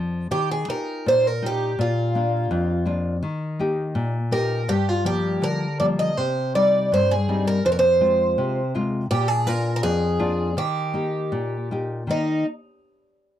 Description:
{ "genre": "fado", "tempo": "82 BPM", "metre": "2/4", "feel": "rubato", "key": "Eb major", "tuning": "A4 = 439 Hz", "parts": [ { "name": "nylon-string guitar", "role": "accompaniment", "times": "0.0-12.4 s", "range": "F2 to G4", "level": "-23 LUFS", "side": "left 2 dB", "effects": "none" }, { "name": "picked twelve-string acoustic guitar", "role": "melody", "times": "0.3-12.4 s", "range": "Eb4 to Eb5", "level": "-22 LUFS", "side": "right 1 dB", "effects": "none" } ], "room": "light reverb", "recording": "dry, close 1970s-style studio recording", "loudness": "-20 LUFS", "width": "side -11 dB against mid", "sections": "0.3-12.1 A section; 12.1-13.4 B section", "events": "none", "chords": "0.3 Ebadd9; 1.8 Bb; 3.2 Eb; 4.7 Gm7; 6.2 Cm; 7.7 Fm; 9.1 Bb; 10.6 Eb; 12.1 Eb5" }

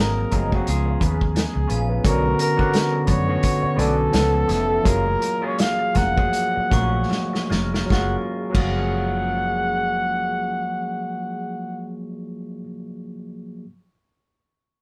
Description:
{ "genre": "lush 1970s-style soul", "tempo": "74-87 BPM", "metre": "4/4", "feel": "swing 58% on 16ths", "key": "F# major", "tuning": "A4 = 440 Hz", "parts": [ { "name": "mellow flugelhorn", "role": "melody", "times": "0.0-11.9 s", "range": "E#4 to F#5", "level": "-26 LUFS", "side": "equal", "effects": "none" }, { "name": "overdriven tine electric piano", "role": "accompaniment", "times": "0.0-13.7 s", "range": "D3 to G#5", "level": "-28 LUFS", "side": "equal", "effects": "none" }, { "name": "vintage muted fingered electric bass", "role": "bass", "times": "0.0-12.6 s", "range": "E#1 to F#2", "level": "-27 LUFS", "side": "equal", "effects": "none" }, { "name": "glockenspiel with brass mallets", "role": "texture", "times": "0.0-12.1 s", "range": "G#5 to A#6", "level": "-38 LUFS", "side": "equal", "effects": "none" }, { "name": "electric guitar through a small old amp", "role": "riff", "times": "0.2-12.7 s", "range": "E#3 to D5", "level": "-36 LUFS", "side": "equal", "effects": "wah" }, { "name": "vintage drum kit", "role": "drums", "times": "0.3-8.7 s", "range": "crash cymbal, hi-hat, kick drum, snare drum", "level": "-26 LUFS", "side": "equal", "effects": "none" }, { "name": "congas", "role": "percussion", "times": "0.3-8.7 s", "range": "none", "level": "-36 LUFS", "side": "equal", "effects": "none" }, { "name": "dark French horn section", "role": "sustained chords", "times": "2.0-11.9 s", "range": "C#3 to G#4", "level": "-40 LUFS", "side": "equal", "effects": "none" } ], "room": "moderate studio ambience, RT60 0.5 s", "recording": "band playing live in one room", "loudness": "-21 LUFS", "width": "mono", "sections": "0.0-2.0 A section; 2.0-7.9 B section; 7.9-11.1 C section", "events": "slowing down 2.0-7.9; drum fill 7.1-7.9", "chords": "0.0 G#9; 0.7 C#7; 2.0 Bmadd9; 4.1 C#7alt; 4.9 F#maj9" }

